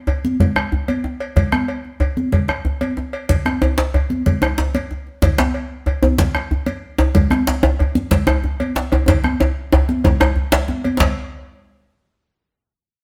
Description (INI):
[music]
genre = west african traditional, West African drum ensemble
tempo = 124 BPM (dotted quarters)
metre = 12/8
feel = straight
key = none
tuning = none
[part]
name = bombo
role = percussion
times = 0.1-11.2 s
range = none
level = -22 LUFS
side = equal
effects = none
[part]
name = cowbell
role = percussion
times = 0.1-11.2 s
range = none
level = -31 LUFS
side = equal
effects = none
[part]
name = djembe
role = percussion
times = 0.1-11.2 s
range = none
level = -25 LUFS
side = equal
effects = none
[part]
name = congas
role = percussion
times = 0.2-11.2 s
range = none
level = -24 LUFS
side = equal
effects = none
[part]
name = djembe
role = percussion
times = 3.6-11.2 s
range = none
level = -20 LUFS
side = equal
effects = none
[sound]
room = moderate stone room reverb, RT60 1.1 s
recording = band playing live in one room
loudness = -18 LUFS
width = mono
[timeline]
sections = 0.0-11.0 A section; 11.0-12.9 B section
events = drum fill 9.1-11.0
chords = none